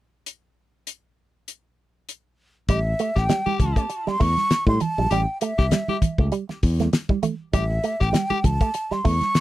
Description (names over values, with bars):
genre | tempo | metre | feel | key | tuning
funk | 99 BPM | 4/4 | swing 56% on 16ths | A mixolydian | A4 = 438 Hz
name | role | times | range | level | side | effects
damped 70s drum kit | drums | 0.3-9.4 s | hi-hat, kick drum, snare drum | -22 LUFS | left 1 dB | none
breathy concert flute | melody | 2.7-9.4 s | E5 to C#6 | -25 LUFS | equal | none
raspy tenor saxophone | second line | 2.7-8.4 s | G4 | -30 LUFS | left 7 dB | tape echo
electric guitar with an envelope filter | riff | 2.7-9.2 s | G3 to A3 | -27 LUFS | right 6 dB | tremolo
modern bright fingered electric bass | bass | 2.7-9.2 s | A1 to A2 | -23 LUFS | left 1 dB | none
congas | percussion | 2.7-9.4 s | none | -28 LUFS | right 7 dB | none
room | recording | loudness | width
little or no reverb | dry, close 1970s-style studio recording | -20 LUFS | side -15 dB against mid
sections
0.3-2.7 A section; 2.7-9.4 B section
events
none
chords
0.3 N.C.; 2.7 A7(no3)